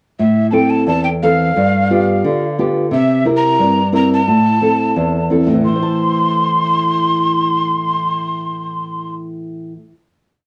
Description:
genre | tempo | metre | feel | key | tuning
andean folk, Andean ensemble | 88 BPM | 2/4 | straight | A minor | A4 = 440 Hz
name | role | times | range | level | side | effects
breathy hollow quena | melody | 0.2-9.1 s | E5 to C6 | -19 LUFS | equal | none
nylon-string guitar | accompaniment | 0.2-9.9 s | E2 to A5 | -17 LUFS | equal | none
room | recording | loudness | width
moderate studio reverb, RT60 0.6 s | worn, warbling old tape, cassette tape, warbly pitch drift | -15 LUFS | mono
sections
0.2-5.6 A section; 5.6-8.4 final chord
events
none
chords
0.2 Am; 1.6 G7; 2.9 C7; 4.3 Am

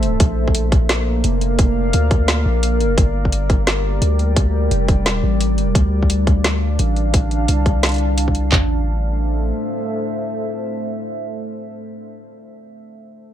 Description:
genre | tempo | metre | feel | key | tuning
half-time drum and bass | 173 BPM | 4/4 | swing 59% on 16ths, half-time | A phrygian | A4 = 440 Hz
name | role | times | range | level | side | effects
deep dark ambient pad | sustained chords | 0.0-12.1 s | G3 to A5 | -22 LUFS | equal | chorus, built-in reverb, vintage 12-bit sampler grit, sidechain pumping
long sustained 808-style bass | bass | 0.0-9.5 s | F1 to D2 | -18 LUFS | equal | none
drum and bass drum kit | drums | 0.0-8.4 s | hi-hat, snare drum | -21 LUFS | equal | none
drum and bass drum kit | drums | 0.2-8.6 s | handclaps, kick drum, toms | -16 LUFS | equal | none
room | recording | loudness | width
light reverb, digital ambience | none | -15 LUFS | side -11 dB against mid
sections
0.0-8.5 A section; 8.5-11.3 B section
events
filter sweep on 808-style bass 0.0-8.5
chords
0.2 Bb; 3.0 Gm; 5.7 Dm; 8.5 Am

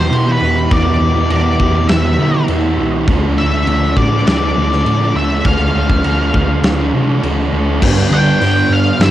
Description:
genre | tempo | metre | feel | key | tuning
rock, shoegaze and dream pop | 101 BPM | 4/4 | straight | unclear | A4 = 438 Hz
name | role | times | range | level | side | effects
octave-fuzz lead guitar | melody | 0.0-9.1 s | B4 to G5 | -19 LUFS | left 2 dB | distortion, cassette tape, analog delay
crunchy overdriven guitar | riff | 0.0-9.1 s | G2 to A4 | -18 LUFS | right 6 dB | reverse reverb, cassette tape
thick fuzz guitar | riff | 0.0-9.1 s | E2 to D4 | -20 LUFS | left 6 dB | distortion, wide subtle chorus, cassette tape
mellow tine electric piano | bass | 0.0-9.1 s | C2 to D3 | -16 LUFS | equal | medium stereo tremolo
big rock drum kit | drums | 0.1-9.1 s | crash cymbal, hi-hat, kick drum, snare drum | -18 LUFS | equal | cassette tape
room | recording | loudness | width
light reverb | home recording on cassette | -11 LUFS | side -13 dB against mid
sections
0.0-7.8 A section; 7.8-9.1 B section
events
none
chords
0.0 Em7; 3.1 Dm; 7.8 G

